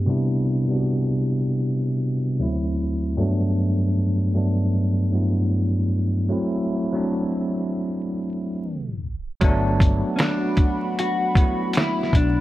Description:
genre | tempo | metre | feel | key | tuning
lo-fi hip hop | 77 BPM | 4/4 | swing 63% on 16ths | G major | A4 = 440 Hz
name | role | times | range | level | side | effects
bell-like tine electric piano | accompaniment | 0.0-12.4 s | D2 to G4 | -21 LUFS | equal | fast stereo tremolo, cassette tape
dark analog pad | sustained chords | 10.0-12.4 s | F#4 to B5 | -31 LUFS | right 2 dB | chorus
mellow fretless electric bass | bass | 9.4-12.4 s | G1 to B1 | -22 LUFS | equal | none
lo-fi sampler-style drum kit | drums | 9.4-12.4 s | hi-hat, kick drum, snare drum | -19 LUFS | equal | none
mellow electric guitar | melody | 10.2-12.4 s | C#4 to F#4 | -24 LUFS | left 2 dB | wide subtle chorus, tape echo
finger snaps | percussion | 10.2-12.0 s | none | -37 LUFS | right 3 dB | none
room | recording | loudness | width
light reverb | vinyl crackle, low-pass filter, tape stop | -20 LUFS | side -15 dB against mid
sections
0.0-9.4 A section; 9.4-12.4 B section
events
filter sweep 0.0-9.4; tape stop 8.6-9.4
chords
0.1 Cmaj9; 2.4 D7; 3.2 Gmaj7; 6.3 D7/F#; 9.4 Gmaj7

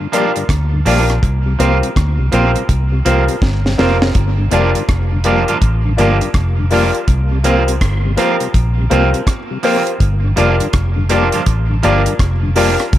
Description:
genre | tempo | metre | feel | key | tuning
roots reggae | 82 BPM | 4/4 | swing 63% on 16ths | G minor | A4 = 440 Hz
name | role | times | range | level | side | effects
mellow tonewheel organ | accompaniment | 0.0-12.7 s | G2 to F4 | -23 LUFS | left 2 dB | chorus vibrato, slow rotary speaker, analog delay
electric guitar at the edge of break-up | accompaniment | 0.1-12.7 s | F3 to F4 | -19 LUFS | right 5 dB | tape echo
warm upright piano | stabs | 0.1-12.8 s | F4 to D5 | -19 LUFS | left 4 dB | none
deep reggae drum kit | drums | 0.1-13.0 s | hi-hat, kick drum, rim click, snare drum | -18 LUFS | equal | analog delay
vintage muted fingered electric bass | bass | 0.5-13.0 s | F1 to D2 | -15 LUFS | equal | none
room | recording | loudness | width
light reverb, small room ambience | none | -12 LUFS | side -13 dB against mid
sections
0.0-4.2 A section; 4.2-13.0 B section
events
drum fill 3.4-4.2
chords
0.0 Gm7; 1.2 C7sus4; 4.2 Gm7; 7.1 C7sus4; 10.0 Gm7

